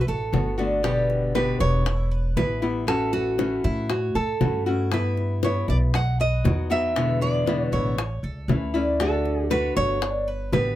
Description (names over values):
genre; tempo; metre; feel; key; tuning
latin, Cuban son and guajira; 118 BPM; 4/4; straight; unclear; A4 = 440 Hz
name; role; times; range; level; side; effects
nylon-string guitar; melody; 0.0-10.8 s; E4 to F#5; -26 LUFS; right 2 dB; none
Cuban tres; arpeggios; 0.0-10.8 s; D4 to E5; -32 LUFS; equal; none
upright bass; bass; 0.0-10.8 s; E1 to A2; -26 LUFS; equal; none
nylon-string guitar; accompaniment; 0.3-10.8 s; B2 to G4; -26 LUFS; left 3 dB; none
bongos; percussion; 0.3-10.8 s; none; -26 LUFS; left 2 dB; none
room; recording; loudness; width
wet booth ambience, RT60 0.2 s; heard from further back in the room; -21 LUFS; side -13 dB against mid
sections
0.0-10.8 A section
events
none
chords
0.0 Bm7; 0.8 G; 1.9 Em; 2.9 A6; 4.9 G6; 5.9 B; 7.0 E7; 8.0 A; 9.0 D; 10.0 G